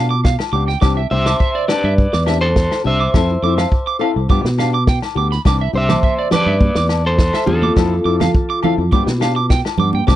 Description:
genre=highlife guitar band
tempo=104 BPM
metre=4/4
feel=straight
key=C major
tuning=A4 = 440 Hz
part: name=electric guitar at the edge of break-up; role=melody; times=0.0-9.7 s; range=F4 to E5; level=-20 LUFS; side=equal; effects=harmonic tremolo
part: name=flamenco guitar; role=accompaniment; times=0.0-10.2 s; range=E3 to A4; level=-23 LUFS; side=left 8 dB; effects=none
part: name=electric guitar at the edge of break-up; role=arpeggios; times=0.0-10.2 s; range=D5 to D6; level=-22 LUFS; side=right 8 dB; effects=tape echo
part: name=fingered electric bass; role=bass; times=0.0-10.2 s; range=C2 to B2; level=-18 LUFS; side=equal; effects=none
part: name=vintage drum kit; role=drums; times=0.2-10.2 s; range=kick drum, snare drum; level=-17 LUFS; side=equal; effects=none
part: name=agogo bells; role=percussion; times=0.4-10.2 s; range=none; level=-27 LUFS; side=left 19 dB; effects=none
part: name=congas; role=percussion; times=5.9-10.1 s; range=none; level=-21 LUFS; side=right 4 dB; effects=none
room=little or no reverb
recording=dry, close 1970s-style studio recording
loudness=-13 LUFS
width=side -13 dB against mid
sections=0.0-10.2 A section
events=none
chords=0.0 G7; 0.8 Cadd9; 3.1 Fmaj7; 4.3 G7; 5.4 Cadd9; 7.8 Fmaj7; 8.9 G7

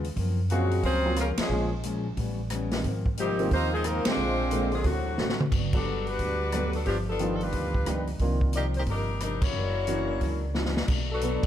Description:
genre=jazz, big band swing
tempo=179 BPM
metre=4/4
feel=swing 64% on 8ths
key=unclear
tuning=A4 = 443 Hz
part: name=fingerpicked plugged-in steel-string acoustic guitar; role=accompaniment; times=0.0-11.5 s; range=Gb2 to F#4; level=-35 LUFS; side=left 4 dB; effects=none
part: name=upright bass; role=bass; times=0.0-11.5 s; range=F#1 to Gb2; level=-30 LUFS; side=equal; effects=none
part: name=swinging big-band drum kit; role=drums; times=0.0-11.5 s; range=crash cymbal, hi-hat, kick drum, ride cymbal, rim click, snare drum, toms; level=-31 LUFS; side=equal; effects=none
part: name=warm saxophone section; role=melody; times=0.5-11.4 s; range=Db3 to D5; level=-30 LUFS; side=left 2 dB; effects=none
part: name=warm trombone section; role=second line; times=0.5-5.4 s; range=A2 to C4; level=-33 LUFS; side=right 2 dB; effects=none
part: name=warm grand piano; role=accompaniment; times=0.5-11.5 s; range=D3 to F5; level=-34 LUFS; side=right 4 dB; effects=none
room=light reverb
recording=none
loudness=-25 LUFS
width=side -10 dB against mid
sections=0.0-5.5 A section; 5.5-11.5 B section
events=band accent 1.3, 4.0, 5.7, 9.4; drum fill 5.2-5.5, 10.6-10.9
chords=0.2 Gbmaj9#11; 1.5 Bbm7; 2.2 A9; 2.8 Ab69; 4.2 Bb9; 4.8 D7; 5.5 Gmaj7; 6.9 G7b13; 8.2 Cm11; 9.5 F#7b13; 10.9 Bm7

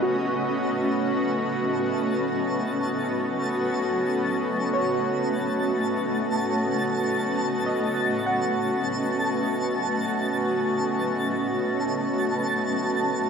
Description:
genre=ambient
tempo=free time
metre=none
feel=none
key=B mixolydian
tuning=A4 = 440 Hz
part: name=granular cloud pad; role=sustained chords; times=0.0-13.3 s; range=A3 to D#5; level=-25 LUFS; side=equal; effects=built-in reverb
part: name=soft round pluck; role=arpeggios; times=0.0-12.9 s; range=F#4 to F#5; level=-32 LUFS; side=equal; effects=lush chorus, ping-pong delay
part: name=hand-pumped harmonium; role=drone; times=0.0-13.3 s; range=B3 to F#4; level=-30 LUFS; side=equal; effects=none
part: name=twinkling granular texture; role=texture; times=0.6-13.3 s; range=A5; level=-31 LUFS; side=right 1 dB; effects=built-in reverb, lush chorus
room=wet lush hall reverb, RT60 2.8 s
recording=dreamy mix soaked in reverb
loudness=-23 LUFS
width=side -6 dB against mid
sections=0.0-13.3 A section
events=none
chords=0.0 B7

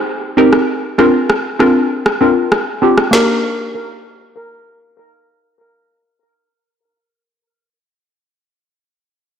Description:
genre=dancehall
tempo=98 BPM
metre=4/4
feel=straight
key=G minor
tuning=A4 = 440 Hz
part: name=hollow square pluck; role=accompaniment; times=0.4-7.0 s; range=Bb3 to Bb4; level=-13 LUFS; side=equal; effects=chorus, phaser, low-pass filter
part: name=electronic rim click and snare drum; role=drums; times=0.5-3.3 s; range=none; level=-17 LUFS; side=equal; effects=soft clipping on snare
part: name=steel pan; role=melody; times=3.1-4.9 s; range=Bb4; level=-20 LUFS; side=left 1 dB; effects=low-pass filter, tape echo
room=moderate plate reverb, RT60 1.7 s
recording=blown-out, overdriven recording, overdrive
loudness=-11 LUFS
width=side -8 dB against mid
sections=0.0-3.1 A section; 3.1-5.6 B section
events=filter sweep 0.0-3.1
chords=0.0 Cm; 0.7 Bbadd9; 3.1 Gm

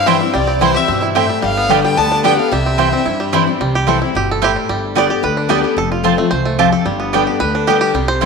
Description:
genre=bluegrass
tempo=221 BPM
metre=4/4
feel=straight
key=C major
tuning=A4 = 439 Hz
part: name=bluegrass banjo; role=melody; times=0.0-8.3 s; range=G3 to D5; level=-20 LUFS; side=right 4 dB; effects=none
part: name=clear fiddle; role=melody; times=0.0-3.3 s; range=C5 to A5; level=-20 LUFS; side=equal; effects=slapback echo
part: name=lap resonator guitar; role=second line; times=0.0-3.3 s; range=C5 to A5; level=-21 LUFS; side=left 7 dB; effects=none
part: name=picked steel-string acoustic guitar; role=accompaniment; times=0.0-8.3 s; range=E2 to G4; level=-18 LUFS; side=left 9 dB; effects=none
part: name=upright bass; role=bass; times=0.0-8.3 s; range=F1 to G2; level=-22 LUFS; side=right 2 dB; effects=none
part: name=mandolin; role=stabs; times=0.1-8.3 s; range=B3 to A5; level=-18 LUFS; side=right 8 dB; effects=none
room=wet echo chamber reverb, RT60 2.1 s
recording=1960s-style stereo with parts hard left and right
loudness=-12 LUFS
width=side -5 dB against mid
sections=0.0-3.6 A section; 3.6-8.3 B section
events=five-string banjo solo 3.6-8.3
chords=0.0 C; 1.4 G; 2.5 C; 4.7 G; 5.8 F; 6.9 G

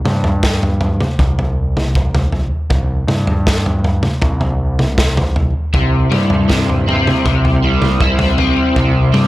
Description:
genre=psychedelic rock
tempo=79 BPM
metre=4/4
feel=straight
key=C major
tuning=A4 = 440 Hz
part: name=growling picked electric bass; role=bass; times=0.0-9.3 s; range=C2 to G2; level=-18 LUFS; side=equal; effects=overdrive
part: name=crunchy breakbeat drum kit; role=drums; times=0.1-9.3 s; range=kick drum, snare drum, toms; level=-16 LUFS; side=equal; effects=none
part: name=crunchy overdriven guitar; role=riff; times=5.7-9.3 s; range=C3 to E4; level=-14 LUFS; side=left 1 dB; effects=rotary speaker
part: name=combo organ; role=sustained chords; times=5.8-9.3 s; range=G3 to C5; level=-23 LUFS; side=right 4 dB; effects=wide subtle chorus
room=little or no reverb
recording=none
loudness=-12 LUFS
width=side -17 dB against mid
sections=0.0-9.3 A section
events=none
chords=0.0 C

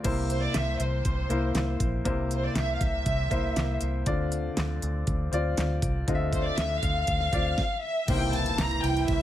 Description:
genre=piano-driven pop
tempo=120 BPM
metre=4/4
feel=straight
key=unclear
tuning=A4 = 440 Hz
part: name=clear concert grand piano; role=accompaniment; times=0.0-9.2 s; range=C3 to E5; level=-31 LUFS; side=left 2 dB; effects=none
part: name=vintage muted fingered electric bass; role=bass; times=0.0-9.2 s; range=Bb1 to D2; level=-29 LUFS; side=equal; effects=none
part: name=pop drum kit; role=drums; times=0.0-9.2 s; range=crash cymbal, handclaps, hi-hat, kick drum, ride cymbal, snare drum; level=-31 LUFS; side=equal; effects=none
part: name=warm studio violin section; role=melody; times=0.3-9.2 s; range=C5 to Bb5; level=-30 LUFS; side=equal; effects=none
part: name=warm French horn section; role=second line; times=8.1-9.2 s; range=E3 to E4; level=-31 LUFS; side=right 7 dB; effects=none
part: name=impact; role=sound effects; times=8.3-9.2 s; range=none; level=-37 LUFS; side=equal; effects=none
room=light reverb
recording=none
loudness=-25 LUFS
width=side -12 dB against mid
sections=0.0-8.1 A section; 8.1-9.2 B section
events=stop 7.6-8.1; impact 8.1-9.2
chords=0.0 C7; 4.1 Dm7; 7.8 N.C.; 8.1 C7

